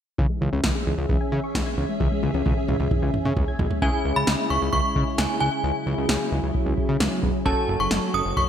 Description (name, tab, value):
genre	synth-pop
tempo	132 BPM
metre	4/4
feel	straight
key	C# minor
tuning	A4 = 439 Hz
part	soft string machine	sustained chords	0.2-8.5 s	C#3 to E5	-29 LUFS	equal	phaser, ensemble chorus
part	soft round pluck	arpeggios	0.2-3.8 s	E3 to G#6	-30 LUFS	left 2 dB	chorus, digital delay
part	fat analog bass	bass	0.2-8.4 s	E1 to C#3	-25 LUFS	equal	none
part	electro analog drum machine	drums	0.2-8.5 s	kick drum, snare drum, toms	-25 LUFS	equal	gated reverb
part	synth chime	melody	3.8-8.5 s	G#5 to D#6	-25 LUFS	right 1 dB	ensemble chorus, tremolo, digital delay
part	funky polysynth comp	accompaniment	3.8-8.5 s	C#4 to A4	-30 LUFS	left 1 dB	chorus
room	moderate lush hall reverb, RT60 1.6 s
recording	bright 1980s-style digital production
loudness	-21 LUFS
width	side -9 dB against mid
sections	0.2-3.8 A section; 3.8-8.5 B section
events	drum fill 2.0-3.8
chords	0.2 C#m; 7.5 F#m